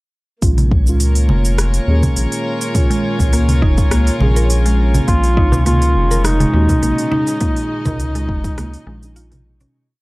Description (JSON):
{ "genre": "organic downtempo", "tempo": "103 BPM", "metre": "4/4", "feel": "swing 54% on 16ths", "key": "Bb minor", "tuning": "A4 = 440 Hz", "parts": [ { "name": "muted felt-like synth keys", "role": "accompaniment", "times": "0.4-9.8 s", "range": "Bb2 to Ab4", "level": "-24 LUFS", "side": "right 2 dB", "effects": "chorus, sidechain pumping, tape echo" }, { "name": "warm studio string section", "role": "sustained chords", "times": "0.4-9.7 s", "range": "Db3 to Eb5", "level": "-26 LUFS", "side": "equal", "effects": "sidechain pumping" }, { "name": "round analog bass", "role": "bass", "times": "0.4-9.7 s", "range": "F1 to Eb2", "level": "-15 LUFS", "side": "equal", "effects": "tube saturation, sidechain pumping" }, { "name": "afro-pop drum kit", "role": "drums", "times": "0.4-9.7 s", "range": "congas, hi-hat, rim click, shaker", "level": "-22 LUFS", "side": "right 1 dB", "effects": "none" }, { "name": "electronic kick drum", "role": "drums", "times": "0.4-8.6 s", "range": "none", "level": "-16 LUFS", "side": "equal", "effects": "none" }, { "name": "drifting glass-harmonics texture", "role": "texture", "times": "0.8-9.8 s", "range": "Db4 to Db5", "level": "-28 LUFS", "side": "left 1 dB", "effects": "chorus, built-in reverb" }, { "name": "mallet-like synth pluck", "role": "arpeggios", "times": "2.9-9.7 s", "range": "Ab3 to Bb4", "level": "-24 LUFS", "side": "equal", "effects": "chorus, tape echo" }, { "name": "warm duduk", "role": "melody", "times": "5.1-9.2 s", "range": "Eb4 to F4", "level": "-20 LUFS", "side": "equal", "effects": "none" }, { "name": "darbuka", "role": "percussion", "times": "5.5-9.7 s", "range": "none", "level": "-24 LUFS", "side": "right 1 dB", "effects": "none" } ], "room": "digital ambience", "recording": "dry, gritty hardware recording", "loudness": "-13 LUFS", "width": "side -21 dB against mid", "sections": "0.4-9.7 groove", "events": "fade-out 6.6-9.7", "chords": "0.4 Bbm7; 5.1 Dbsus2" }